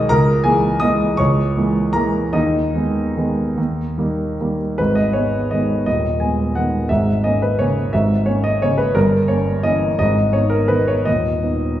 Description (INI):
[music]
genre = classical, piano waltz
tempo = 143-186 BPM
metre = 3/4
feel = rubato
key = G# minor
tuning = A4 = 440 Hz
[part]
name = warm grand piano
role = solo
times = 0.0-11.8 s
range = D#1 to G#6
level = -15 LUFS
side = equal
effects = none
[sound]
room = wet recital hall reverb, RT60 1.4 s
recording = heard from further back in the room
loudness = -15 LUFS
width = side -12 dB against mid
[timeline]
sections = 0.0-4.8 A section; 4.8-11.8 B section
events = none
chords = 0.1 A#m7b5/C#; 2.3 G#m/D#; 3.6 D#; 4.8 G#m; 6.9 A#m7b5/G#; 9.0 Gdim7; 10.0 G#m; 11.1 G#m/D# (rootless)